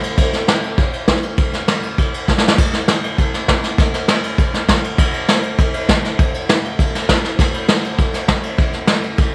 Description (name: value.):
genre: rock.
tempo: 200 BPM.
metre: 4/4.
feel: straight.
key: none.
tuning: none.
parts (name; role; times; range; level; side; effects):
vintage brush drum kit; drums; 0.0-9.3 s; crash cymbal, kick drum, ride cymbal, snare drum; -17 LUFS; equal; none.
room: moderate echo chamber reverb, RT60 1.4 s.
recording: none.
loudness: -17 LUFS.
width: mono.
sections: 0.0-2.6 A section; 2.6-9.3 B section.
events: drum fill 2.3-2.6.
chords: none.